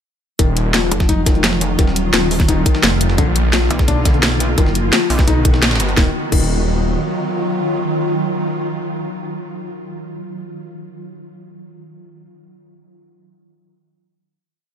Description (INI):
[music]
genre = dark technical drum and bass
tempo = 172 BPM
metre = 4/4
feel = straight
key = Eb harmonic minor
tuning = A4 = 439 Hz
[part]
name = swarming drone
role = sustained chords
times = 1.1-9.5 s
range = D3 to F#4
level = -22 LUFS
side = right 1 dB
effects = built-in reverb, sidechain pumping
[part]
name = felt-muted upright piano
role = arpeggios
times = 0.4-6.4 s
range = D3 to Eb4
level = -22 LUFS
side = left 6 dB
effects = sidechain pumping, ping-pong delay
[part]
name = wide detuned saw bass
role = bass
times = 0.4-3.7, 6.0-7.0 s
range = Eb1 to Bb1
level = -17 LUFS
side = equal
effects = chorus, tube saturation
[part]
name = breakbeat sampler-style drum kit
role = drums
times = 0.4-6.0 s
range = hi-hat, snare drum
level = -27 LUFS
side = right 1 dB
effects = none
[part]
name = drum and bass drum kit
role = drums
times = 0.4-6.4 s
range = crash cymbal, hi-hat, snare drum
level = -18 LUFS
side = equal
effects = overdrive
[part]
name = electronic kick drum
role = drums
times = 0.4-6.4 s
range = none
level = -15 LUFS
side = equal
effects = none
[part]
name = pulsing pluck wobble bass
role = bass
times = 0.9-6.0 s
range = Eb1 to Cb2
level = -18 LUFS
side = equal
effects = chorus
[sound]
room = light reverb, digital ambience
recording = none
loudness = -14 LUFS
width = side -8 dB against mid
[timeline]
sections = 0.4-6.0 drop; 6.0-8.8 final chord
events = drop 0.4-6.0; band accent 5.6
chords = 0.4 Ebmadd9; 1.8 F7; 3.2 Bb; 4.6 B; 6.0 Ebmadd9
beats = | 0.39 0.74 1.09 1.44 | 1.79 2.14 2.48 2.83 | 3.18 3.53 3.88 4.23 | 4.58 4.93 5.28 5.62 | 5.97 6.32 6.67 7.02 | 7.37 7.72 8.07 8.41